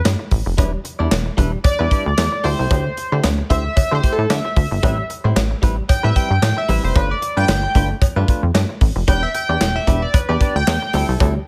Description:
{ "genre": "early-eighties boogie funk", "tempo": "113 BPM", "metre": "4/4", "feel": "swing 56% on 16ths", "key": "unclear", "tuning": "A4 = 436 Hz", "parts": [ { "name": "direct-recorded clean electric guitar", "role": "riff", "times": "0.0-11.4 s", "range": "G3 to D5", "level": "-28 LUFS", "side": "equal", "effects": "subtle chorus" }, { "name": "plucky analog bass", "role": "bass", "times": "0.1-11.4 s", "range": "E1 to D3", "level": "-22 LUFS", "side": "equal", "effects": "none" }, { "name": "modern studio drum kit", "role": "drums", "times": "0.1-11.3 s", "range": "handclaps, hi-hat, kick drum, snare drum", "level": "-21 LUFS", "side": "equal", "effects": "gated reverb" }, { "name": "cowbell", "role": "percussion", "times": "0.1-11.3 s", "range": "none", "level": "-32 LUFS", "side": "equal", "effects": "none" }, { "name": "chorused polysynth", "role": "accompaniment", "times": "1.6-11.1 s", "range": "A4 to G5", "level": "-24 LUFS", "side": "equal", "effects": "none" } ], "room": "studio ambience", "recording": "none", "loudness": "-18 LUFS", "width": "mono", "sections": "0.0-11.5 A section", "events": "analog polysynth solo 0.0-11.5", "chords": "0.0 G9; 0.6 Em7; 2.4 D9sus4; 4.8 Am9; 7.0 G9; 9.1 Em7; 10.9 D9sus4" }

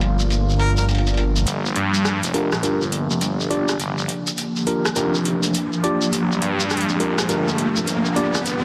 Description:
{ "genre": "glitch hop", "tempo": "103 BPM", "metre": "4/4", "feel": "swing 63% on 16ths", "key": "G minor", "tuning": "A4 = 439 Hz", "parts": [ { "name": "warm analog pad", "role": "sustained chords", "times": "0.0-8.6 s", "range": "F3 to G4", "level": "-28 LUFS", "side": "equal", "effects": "chorus" }, { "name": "tine electric piano", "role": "stabs", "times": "0.0-8.4 s", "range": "D4 to D5", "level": "-28 LUFS", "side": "equal", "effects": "low-pass filter, delay" }, { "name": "phased detuned saw bass", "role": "bass", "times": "0.0-8.6 s", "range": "F1 to G2", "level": "-24 LUFS", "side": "equal", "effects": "phaser, high-pass filter" }, { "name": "pop drum kit", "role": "drums", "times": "0.0-8.6 s", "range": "hi-hat, rim click", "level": "-30 LUFS", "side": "equal", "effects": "overdrive, low-pass filter on hats, low-pass filter on snare, low-pass filter on room" }, { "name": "shekere", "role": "percussion", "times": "0.2-8.6 s", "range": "none", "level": "-31 LUFS", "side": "equal", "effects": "none" }, { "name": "bright harmonica", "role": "melody", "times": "0.6-0.8 s", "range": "Bb4", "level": "-31 LUFS", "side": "equal", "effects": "vintage 12-bit sampler grit, delay" }, { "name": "riser", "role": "sound effects", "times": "3.4-8.6 s", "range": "none", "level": "-30 LUFS", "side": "equal", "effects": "none" } ], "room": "moderate plate reverb, RT60 2.5 s", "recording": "dense, heavily limited modern master, vinyl crackle, lossy compression artefacts", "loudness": "-21 LUFS", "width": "mono", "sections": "0.0-1.5 A section; 1.5-8.6 B section", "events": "build-up 1.5-8.6; filter sweep on tine electric piano 1.5-8.6; filter sweep on analog synth pad 1.5-8.6; riser 3.4-8.6", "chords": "0.0 Gm7" }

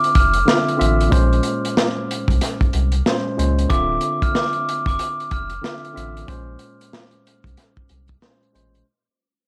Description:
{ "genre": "hip hop, boom-bap hip-hop", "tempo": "93 BPM", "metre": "4/4", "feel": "swing 61% on 16ths", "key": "unclear", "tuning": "A4 = 440 Hz", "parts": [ { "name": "mellow tine electric piano", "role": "accompaniment", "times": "0.0-8.8 s", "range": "Bb2 to E5", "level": "-27 LUFS", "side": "equal", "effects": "high-pass filter, low-pass filter" }, { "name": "crunchy breakbeat drum kit", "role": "drums", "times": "0.0-8.9 s", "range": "hi-hat, kick drum, snare drum", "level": "-23 LUFS", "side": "equal", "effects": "none" }, { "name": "glockenspiel with brass mallets", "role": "melody", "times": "0.2-5.5 s", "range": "D6 to F6", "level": "-25 LUFS", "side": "equal", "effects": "high-pass filter, low-pass filter, analog delay" }, { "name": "warm sub bass", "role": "bass", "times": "0.2-8.8 s", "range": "D1 to Db2", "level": "-23 LUFS", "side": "equal", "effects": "none" } ], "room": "studio reverb", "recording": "dry, gritty hardware recording, vinyl crackle", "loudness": "-19 LUFS", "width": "mono", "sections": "0.0-8.9 A section", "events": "fade-out 0.0-8.9", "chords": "0.0 Dm9; 1.1 Bbm9; 3.7 Dm9; 6.3 Bbm9" }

